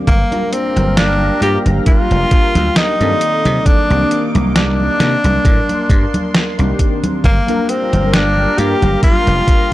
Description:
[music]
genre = vaporwave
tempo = 67 BPM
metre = 4/4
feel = swing 54% on 16ths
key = G minor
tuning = A4 = 440 Hz
[part]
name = warbly lo-fi synth keys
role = accompaniment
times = 0.0-9.7 s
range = Eb3 to D5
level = -21 LUFS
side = left 1 dB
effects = analog chorus
[part]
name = lush unison pad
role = sustained chords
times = 0.0-9.7 s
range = Bb3 to D6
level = -25 LUFS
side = right 1 dB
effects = chorus, phaser, vintage 12-bit sampler grit
[part]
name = clear tenor saxophone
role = melody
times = 0.1-9.7 s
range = Bb3 to G4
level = -17 LUFS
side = equal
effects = tape echo
[part]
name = dry thumbed slap bass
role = bass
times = 0.1-9.4 s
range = F1 to C3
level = -16 LUFS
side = equal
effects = tube saturation
[part]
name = detuned 8-bit digital drum machine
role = drums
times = 0.1-9.7 s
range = congas, hi-hat, snare drum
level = -19 LUFS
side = equal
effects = none
[part]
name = electronic kick drum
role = drums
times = 0.1-9.7 s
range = none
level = -12 LUFS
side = equal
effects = none
[sound]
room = little or no reverb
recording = dry, gritty hardware recording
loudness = -11 LUFS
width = side -16 dB against mid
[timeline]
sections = 0.0-9.7 A section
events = none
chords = 0.1 Gm7; 3.2 Cm9; 7.2 Gm7

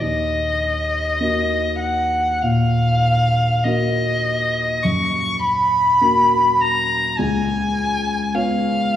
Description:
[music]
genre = classical, romantic duo for violin and grand piano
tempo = 51 BPM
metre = 4/4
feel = rubato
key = Eb minor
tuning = A4 = 441 Hz
[part]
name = warm violin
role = melody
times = 0.0-9.0 s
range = Eb5 to Db6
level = -18 LUFS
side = left 1 dB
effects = none
[part]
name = warm baby grand piano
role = accompaniment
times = 0.0-9.0 s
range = Db2 to Db5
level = -21 LUFS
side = left 1 dB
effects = none
[sound]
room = wet recital hall reverb, RT60 1.5 s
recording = heard from further back in the room, vinyl crackle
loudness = -16 LUFS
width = side -11 dB against mid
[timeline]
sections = 0.0-9.0 A section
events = none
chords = 0.0 Ebm; 4.8 Gb; 7.2 Db7

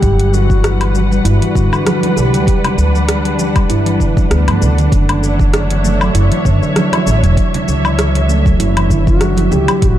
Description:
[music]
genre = organic downtempo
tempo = 98 BPM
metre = 4/4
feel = swing 55% on 16ths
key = unclear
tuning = A4 = 440 Hz
[part]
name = mellow bass bansuri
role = melody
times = 0.0-2.8, 8.9-10.0 s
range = E4 to A4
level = -21 LUFS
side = left 3 dB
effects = ping-pong delay
[part]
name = muted studio string section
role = sustained chords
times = 0.0-10.0 s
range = F#3 to F#5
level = -20 LUFS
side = equal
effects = sidechain pumping
[part]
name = upright bass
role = bass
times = 0.0-10.0 s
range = E1 to G2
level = -14 LUFS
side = equal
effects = none
[part]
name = deep house drum kit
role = drums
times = 0.0-10.0 s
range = hi-hat, rim click, shaker, woodblock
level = -20 LUFS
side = left 1 dB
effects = overdrive, small room ambience
[part]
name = electronic kick drum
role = drums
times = 0.0-10.0 s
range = none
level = -14 LUFS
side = equal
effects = small room ambience
[part]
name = bongos and congas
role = percussion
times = 0.3-9.7 s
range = none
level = -23 LUFS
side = right 3 dB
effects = none
[part]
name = handpan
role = arpeggios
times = 0.5-9.8 s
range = D3 to E4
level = -17 LUFS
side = equal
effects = digital delay
[sound]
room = light reverb, small room reverb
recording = dark, warm production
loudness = -11 LUFS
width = side -12 dB against mid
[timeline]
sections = 0.0-10.0 A section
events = none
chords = 0.0 Gmaj7; 4.9 Dmaj7

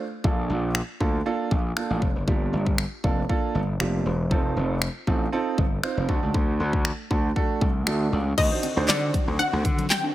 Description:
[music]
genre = dance-pop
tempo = 118 BPM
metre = 4/4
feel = straight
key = unclear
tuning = A4 = 441 Hz
[part]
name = warm concert grand piano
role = accompaniment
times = 0.2-9.3 s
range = A3 to C5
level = -29 LUFS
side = right 5 dB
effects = sidechain pumping
[part]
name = gritty slap bass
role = bass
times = 0.2-9.8 s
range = E1 to D3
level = -25 LUFS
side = equal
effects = overdrive, sidechain pumping
[part]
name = pop drum kit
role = drums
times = 0.2-10.0 s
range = crash cymbal, finger snaps, handclaps, hi-hat, kick drum, snare drum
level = -25 LUFS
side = left 1 dB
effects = none
[part]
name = wide unison pluck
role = melody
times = 8.4-10.1 s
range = D5 to G5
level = -26 LUFS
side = left 1 dB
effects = none
[part]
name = supersaw chords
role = sustained chords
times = 8.4-10.1 s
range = D3 to F#4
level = -34 LUFS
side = equal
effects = phaser, sidechain pumping
[part]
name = mallet-like synth pluck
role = arpeggios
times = 8.4-10.1 s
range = Eb3 to D4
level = -33 LUFS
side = left 4 dB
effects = chorus, sidechain pumping
[sound]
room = digital ambience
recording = none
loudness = -22 LUFS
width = side -14 dB against mid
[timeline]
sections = 0.0-8.4 A section; 8.4-10.1 B section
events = none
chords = 0.2 Bbmaj7; 2.3 Gm7; 4.3 F7; 6.1 D; 8.4 D7b9

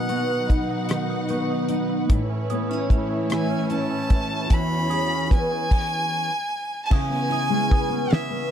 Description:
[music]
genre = six-eight pop ballad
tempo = 50 BPM (dotted quarters)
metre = 6/8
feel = straight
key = C# minor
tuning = A4 = 437 Hz
[part]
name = clear violin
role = melody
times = 0.0-8.5 s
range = E5 to B5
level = -27 LUFS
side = equal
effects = none
[part]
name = fingerpicked steel-string acoustic guitar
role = accompaniment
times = 0.0-8.5 s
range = A2 to B4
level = -25 LUFS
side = equal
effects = double-tracked left and right
[part]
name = warm studio string section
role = sustained chords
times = 0.0-5.7 s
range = E2 to F#5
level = -28 LUFS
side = left 1 dB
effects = none
[part]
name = electric guitar with an envelope filter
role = arpeggios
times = 0.0-8.5 s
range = D#3 to G#4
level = -34 LUFS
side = right 8 dB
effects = none
[part]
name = damped 70s drum kit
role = drums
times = 0.1-8.3 s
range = crash cymbal, hi-hat, kick drum, ride cymbal, rim click, snare drum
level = -20 LUFS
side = equal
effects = none
[sound]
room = small room ambience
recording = dry, close 1970s-style studio recording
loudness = -21 LUFS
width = side -9 dB against mid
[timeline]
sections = 0.0-6.9 A section; 6.9-8.5 B section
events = stop 5.7-6.9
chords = 0.0 B; 2.1 Amaj7; 4.5 E6; 6.9 C#m7

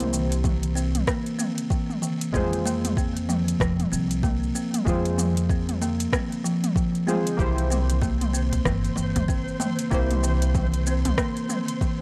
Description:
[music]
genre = organic downtempo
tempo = 95 BPM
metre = 4/4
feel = swing 60% on 16ths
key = F harmonic minor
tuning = A4 = 436 Hz
[part]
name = deep mellow chord stab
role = accompaniment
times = 0.0-12.0 s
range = Ab3 to C5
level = -32 LUFS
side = equal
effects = chorus, sidechain pumping, tape echo
[part]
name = upright bass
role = bass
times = 0.0-11.1 s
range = F1 to F2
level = -28 LUFS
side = equal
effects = tube saturation, sidechain pumping
[part]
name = organic electronic drum kit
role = drums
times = 0.0-12.0 s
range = hi-hat, rim click, shaker, toms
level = -33 LUFS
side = equal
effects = overdrive, small room ambience
[part]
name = buzzing kalimba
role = arpeggios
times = 0.1-12.0 s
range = E3 to C4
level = -29 LUFS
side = equal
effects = tape echo
[part]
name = electronic kick drum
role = drums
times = 0.4-12.0 s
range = none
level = -29 LUFS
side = equal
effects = overdrive, small room ambience
[part]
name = cajon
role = percussion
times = 7.4-11.2 s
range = none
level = -33 LUFS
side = equal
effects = none
[part]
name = twinkling granular texture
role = texture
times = 7.8-12.0 s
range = C5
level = -38 LUFS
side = equal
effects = built-in reverb
[sound]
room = little or no reverb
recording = dry, gritty hardware recording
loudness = -24 LUFS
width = mono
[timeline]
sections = 0.0-12.0 A section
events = none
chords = 0.0 C7; 2.3 Fm; 7.4 C7

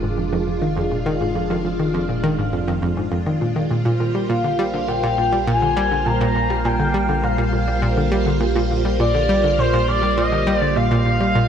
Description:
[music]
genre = ambient, sequencer-driven space music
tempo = 102 BPM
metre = 4/4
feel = straight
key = unclear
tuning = A4 = 440 Hz
[part]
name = phased string machine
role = sustained chords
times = 0.0-11.5 s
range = G3 to F5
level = -23 LUFS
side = equal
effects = ensemble chorus, phaser
[part]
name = analog pluck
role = riff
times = 0.0-11.4 s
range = F2 to G3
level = -21 LUFS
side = equal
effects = chorus, ping-pong delay
[part]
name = round analog bass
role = bass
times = 0.0-11.5 s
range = F1 to Bb1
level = -26 LUFS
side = equal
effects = none
[part]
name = expressive portamento lead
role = melody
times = 4.3-11.5 s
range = C5 to Bb5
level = -21 LUFS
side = equal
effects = lush chorus, ping-pong delay
[sound]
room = moderate plate reverb, RT60 3.4 s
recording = none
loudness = -17 LUFS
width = side -8 dB against mid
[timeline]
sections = 0.0-11.5 A section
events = none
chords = 0.0 Fm; 3.7 Bb6

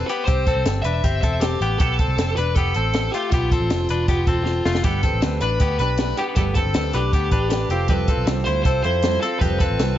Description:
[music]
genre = jangly indie pop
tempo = 158 BPM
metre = 4/4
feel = straight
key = G mixolydian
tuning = A4 = 440 Hz
[part]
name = fuzz lead guitar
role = melody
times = 0.0-10.0 s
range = F4 to E5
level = -24 LUFS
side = left 1 dB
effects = distortion
[part]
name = direct-recorded clean electric guitar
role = arpeggios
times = 0.0-10.0 s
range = A3 to C5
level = -26 LUFS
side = left 4 dB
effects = none
[part]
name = vintage muted picked electric bass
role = bass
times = 0.0-10.0 s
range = E1 to F2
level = -23 LUFS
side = equal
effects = none
[part]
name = compact cocktail drum kit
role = drums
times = 0.1-9.9 s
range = hi-hat, kick drum, snare drum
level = -22 LUFS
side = equal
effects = none
[part]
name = fingerpicked steel-string acoustic guitar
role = accompaniment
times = 4.8-10.0 s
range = F3 to B4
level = -28 LUFS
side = right 6 dB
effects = none
[sound]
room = light reverb, small room reverb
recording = nothing above 7.7 kHz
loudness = -18 LUFS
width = side -12 dB against mid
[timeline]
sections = 0.0-10.0 A section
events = drum fill 4.5-4.8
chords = 0.0 C; 1.8 B7(b5, no3); 4.8 Gadd9; 7.7 Fadd9

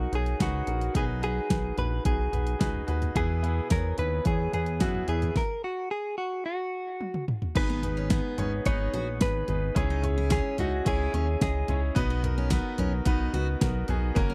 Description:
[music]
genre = piano-driven pop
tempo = 109 BPM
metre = 4/4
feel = straight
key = B major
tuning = A4 = 440 Hz
[part]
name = direct-recorded clean electric guitar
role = melody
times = 0.0-11.8 s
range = F#4 to C#5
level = -34 LUFS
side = equal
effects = none
[part]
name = clear grand piano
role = accompaniment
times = 0.0-14.3 s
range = G#2 to D#5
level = -36 LUFS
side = equal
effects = none
[part]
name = chorused synth bass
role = bass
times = 0.0-14.3 s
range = F#1 to F#2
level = -31 LUFS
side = equal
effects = none
[part]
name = deep house drum kit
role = drums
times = 0.1-14.3 s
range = crash cymbal, hi-hat, kick drum, snare drum, toms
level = -31 LUFS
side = equal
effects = none
[part]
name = picked steel-string acoustic guitar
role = riff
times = 7.7-14.3 s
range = B3 to F#4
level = -39 LUFS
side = equal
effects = none
[sound]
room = little or no reverb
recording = dry, close 1970s-style studio recording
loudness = -28 LUFS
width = mono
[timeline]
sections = 0.0-7.6 A section; 7.6-14.3 B section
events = stop 5.4-7.6; drum fill 7.0-7.6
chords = 0.0 B6; 3.2 E; 5.4 N.C.; 7.6 G#m; 9.8 C#m; 12.0 B

